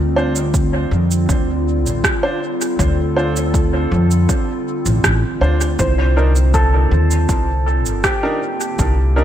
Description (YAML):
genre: ambient dub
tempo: 80 BPM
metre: 4/4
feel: straight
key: unclear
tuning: A4 = 440 Hz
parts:
  - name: warbly tape-like pad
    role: sustained chords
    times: 0.0-9.2 s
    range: D3 to A4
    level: -22 LUFS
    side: right 1 dB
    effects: chorus, built-in reverb
  - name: upright bass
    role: bass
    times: 0.0-9.2 s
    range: G1 to F2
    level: -16 LUFS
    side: equal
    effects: tube saturation
  - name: warm upright piano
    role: stabs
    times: 0.2-9.2 s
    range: D4 to C5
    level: -23 LUFS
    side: right 1 dB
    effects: dub echo
  - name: electronic cabasa and rim click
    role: drums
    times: 0.4-8.9 s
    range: none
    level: -22 LUFS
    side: right 2 dB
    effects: dub echo
  - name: electronic kick drum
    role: drums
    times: 0.5-8.9 s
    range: none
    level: -20 LUFS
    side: equal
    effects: overdrive
  - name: felt-muted upright piano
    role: arpeggios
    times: 5.8-9.2 s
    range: G4 to C5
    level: -22 LUFS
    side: equal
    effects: tape echo
room: light reverb, small room ambience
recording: none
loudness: -14 LUFS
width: side -11 dB against mid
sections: 0.0-9.2 A section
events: none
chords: 0.0 Dm7; 5.8 Cm9